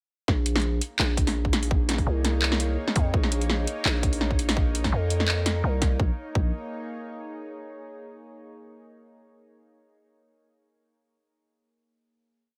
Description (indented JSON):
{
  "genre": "half-time drum and bass",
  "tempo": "168 BPM",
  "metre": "4/4",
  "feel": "swing 54% on 16ths, half-time",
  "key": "Bb minor",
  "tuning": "A4 = 440 Hz",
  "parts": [
    { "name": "bowed-like drone", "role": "sustained chords", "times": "0.9-7.4 s", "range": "Bb3 to Db5", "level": "-39 LUFS", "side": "equal", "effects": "built-in reverb, sidechain pumping" },
    { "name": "growling 808-style bass", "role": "bass", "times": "0.3-6.5 s", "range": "Bb1 to F2", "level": "-28 LUFS", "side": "equal", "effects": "tube saturation" },
    { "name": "drum and bass drum kit", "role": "drums", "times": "0.3-5.9 s", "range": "handclaps, hi-hat, snare drum", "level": "-29 LUFS", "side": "equal", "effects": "none" },
    { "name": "electronic kick drum", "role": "drums", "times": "0.3-6.4 s", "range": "none", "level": "-28 LUFS", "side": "equal", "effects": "none" }
  ],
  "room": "light reverb",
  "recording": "none",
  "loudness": "-25 LUFS",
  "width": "mono",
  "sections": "0.3-6.0 drop; 6.0-7.4 final chord",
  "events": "drop 0.3-6.0",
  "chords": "0.3 Bbmadd9; 6.0 Bbm"
}